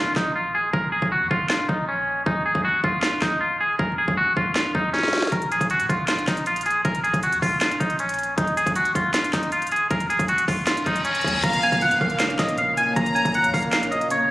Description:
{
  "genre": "hip hop, trap",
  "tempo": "157 BPM",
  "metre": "4/4",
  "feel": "half-time",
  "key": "unclear",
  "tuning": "A4 = 440 Hz",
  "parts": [
    { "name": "twangy electric guitar", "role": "melody", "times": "0.0-14.3 s", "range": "Db4 to Bb5", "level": "-21 LUFS", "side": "equal", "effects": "spring reverb, low-pass filter, tape echo" },
    { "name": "clean 808-style bass", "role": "bass", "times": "0.0-14.0 s", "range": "Eb1 to Bb2", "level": "-35 LUFS", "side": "equal", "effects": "none" },
    { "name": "impact, reverse cymbal and downlifter", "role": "sound effects", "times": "0.1-0.7, 10.8-14.3 s", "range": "none", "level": "-32 LUFS", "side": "left 1 dB", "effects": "none" },
    { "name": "trap drum kit", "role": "drums", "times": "0.2-14.2 s", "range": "crash cymbal, handclaps, hi-hat, kick drum, snare drum", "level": "-25 LUFS", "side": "equal", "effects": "none" },
    { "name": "clear studio violin section", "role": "second line", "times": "11.4-13.7 s", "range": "F5 to Bb5", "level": "-27 LUFS", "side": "equal", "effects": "tape echo" },
    { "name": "dark baby grand piano", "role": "accompaniment", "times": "11.4-14.3 s", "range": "Bb2 to Db4", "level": "-28 LUFS", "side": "right 1 dB", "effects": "low-pass filter" },
    { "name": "ethereal airy pad", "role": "sustained chords", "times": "12.2-14.3 s", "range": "Bb3 to F5", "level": "-36 LUFS", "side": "left 1 dB", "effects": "ensemble chorus, built-in reverb" }
  ],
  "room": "light reverb, digital ambience",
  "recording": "recorded on a phone in the room, club reverb, vinyl crackle, faint mains hum",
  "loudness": "-19 LUFS",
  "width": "side -17 dB against mid",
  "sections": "0.0-11.4 A section; 11.4-14.3 B section",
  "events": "break 0.0-5.3; impact 0.0-0.7; drum fill 4.9-5.3; reverse cymbal 10.8-11.4",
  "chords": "0.0 Bb5; 2.3 N.C.; 5.3 Bb5; 8.4 N.C.; 11.4 Bbm",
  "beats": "0.35 | 0.73 1.12 1.50 1.88 | 2.26 2.65 3.03 3.41 | 3.79 4.17 4.56 4.94 | 5.32 5.70 6.08 6.47 | 6.85 7.23 7.61 8.00 | 8.38 8.76 9.14 9.52 | 9.91 10.29 10.67 11.05 | 11.44 11.82 12.20 12.58 | 12.96 13.35 13.73 14.11"
}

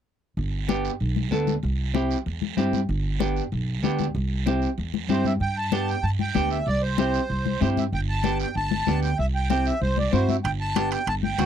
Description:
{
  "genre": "latin, cumbia",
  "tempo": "191 BPM",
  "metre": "4/4",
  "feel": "straight",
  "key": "G major",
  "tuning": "A4 = 440 Hz",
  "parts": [
    { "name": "upright bass", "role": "bass", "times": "0.4-11.5 s", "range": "G1 to G2", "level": "-26 LUFS", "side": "right 1 dB", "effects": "none" },
    { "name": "congas", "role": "percussion", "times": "0.4-11.5 s", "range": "none", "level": "-28 LUFS", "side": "left 14 dB", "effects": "none" },
    { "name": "guiro", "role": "percussion", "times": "0.4-11.5 s", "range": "none", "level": "-39 LUFS", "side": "right 20 dB", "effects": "none" },
    { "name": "semi-hollow electric guitar", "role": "accompaniment", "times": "0.7-11.5 s", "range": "B3 to A4", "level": "-26 LUFS", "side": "right 1 dB", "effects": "none" },
    { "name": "accordion", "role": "melody", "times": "5.1-11.5 s", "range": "C5 to A5", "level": "-28 LUFS", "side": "right 2 dB", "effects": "light tremolo tuning" },
    { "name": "timbales", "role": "percussion", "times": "10.4-11.5 s", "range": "none", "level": "-32 LUFS", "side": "right 10 dB", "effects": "none" }
  ],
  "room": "little or no reverb",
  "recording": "dry, close 1970s-style studio recording",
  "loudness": "-22 LUFS",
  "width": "side -9 dB against mid",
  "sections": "0.4-5.4 A section; 5.4-11.5 B section",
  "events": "none",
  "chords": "0.4 G; 1.6 C; 2.9 G; 4.2 C; 5.4 G; 6.7 C; 7.9 G; 9.2 C; 10.4 G",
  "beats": "| 0.37 0.69 1.00 1.32 | 1.63 1.95 2.26 2.58 | 2.89 3.21 3.52 3.84 | 4.15 4.47 4.78 5.10 | 5.41 5.73 6.04 6.36 | 6.67 6.98 7.30 7.61 | 7.93 8.24 8.56 8.87 | 9.19 9.50 9.81 10.13 | 10.44 10.76 11.07 11.39"
}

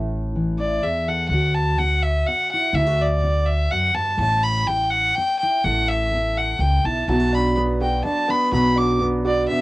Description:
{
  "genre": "folk",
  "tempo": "124 BPM",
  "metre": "3/4",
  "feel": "straight",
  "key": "D major",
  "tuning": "A4 = 440 Hz",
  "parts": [
    { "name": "fingerpicked steel-string acoustic guitar", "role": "accompaniment", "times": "0.0-9.6 s", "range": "D2 to A4", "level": "-26 LUFS", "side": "equal", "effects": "cassette tape" },
    { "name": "upright bass", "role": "bass", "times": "0.0-9.5 s", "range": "A1 to D2", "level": "-23 LUFS", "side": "equal", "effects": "none" },
    { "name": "warm fiddle", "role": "melody", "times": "0.6-9.6 s", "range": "D5 to D6", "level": "-21 LUFS", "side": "equal", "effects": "none" },
    { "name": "clear upright piano", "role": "arpeggios", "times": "7.1-9.6 s", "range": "F#3 to F#4", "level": "-23 LUFS", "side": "right 2 dB", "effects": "cassette tape" }
  ],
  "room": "wet booth ambience, RT60 0.2 s",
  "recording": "home recording on cassette",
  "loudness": "-18 LUFS",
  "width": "side -19 dB against mid",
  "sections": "0.0-1.3 A section; 1.3-9.6 B section",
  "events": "none",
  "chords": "0.0 A5; 1.3 Dadd9; 4.2 A5; 7.1 Bm",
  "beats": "0.34 0.82 | 1.30 1.78 2.26 | 2.75 3.23 3.71 | 4.19 4.67 5.16 | 5.64 6.12 6.60 | 7.08 7.57 8.05 | 8.53 9.01 9.49"
}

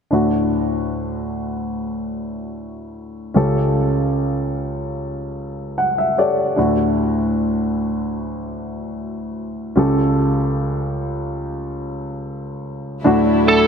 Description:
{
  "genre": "pop ballad",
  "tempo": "74 BPM",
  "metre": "4/4",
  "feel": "straight",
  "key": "D major",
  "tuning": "A4 = 440 Hz",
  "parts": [
    { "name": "warm baby grand piano", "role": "accompaniment", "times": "0.1-13.7 s", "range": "C#2 to F#5", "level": "-18 LUFS", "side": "equal", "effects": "none" },
    { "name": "warm studio string section", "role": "sustained chords", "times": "13.0-13.7 s", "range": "F#3 to A4", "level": "-22 LUFS", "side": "left 1 dB", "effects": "none" },
    { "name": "biting lead guitar", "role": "melody", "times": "13.5-13.7 s", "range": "A4", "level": "-12 LUFS", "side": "right 2 dB", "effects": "overdrive" }
  ],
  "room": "moderate lush hall reverb, RT60 2.4 s",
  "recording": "dark, warm production",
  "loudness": "-18 LUFS",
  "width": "side -6 dB against mid",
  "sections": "0.1-13.0 A section",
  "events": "grand piano fill 5.4-6.6",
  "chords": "0.1 Dadd9; 3.3 A7/C#; 6.6 Dadd9; 9.8 A7/C#; 13.0 Dadd9",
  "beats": "| 0.11 0.92 1.74 2.54 | 3.35 4.15 4.96 5.76 | 6.57 7.37 8.16 8.96 | 9.77 10.59 11.40 12.22 | 13.05"
}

